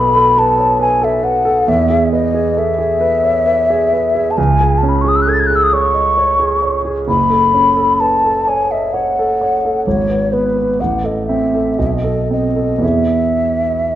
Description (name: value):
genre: classical, romantic duo for flute and grand piano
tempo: 54-70 BPM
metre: 3/4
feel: rubato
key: E major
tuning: A4 = 440 Hz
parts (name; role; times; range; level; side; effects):
- mellow hollow concert flute; melody; 0.0-14.0 s; B4 to A6; -14 LUFS; left 2 dB; none
- warm concert grand piano; accompaniment; 0.0-14.0 s; F#1 to D#5; -16 LUFS; right 2 dB; none
room: wet recital hall reverb, RT60 1.4 s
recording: dark, warm production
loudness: -12 LUFS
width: side -12 dB against mid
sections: 0.0-14.0 A section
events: none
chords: 0.0 B7sus2; 1.7 E; 4.4 C#5; 7.1 F#m; 9.9 G#madd11; 10.8 Am6; 11.8 B7b9; 12.8 E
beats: 0.80 | 1.68 2.57 3.47 | 4.37 5.28 6.18 | 7.08 7.99 8.93 | 9.86 10.79 11.77 | 12.82 13.91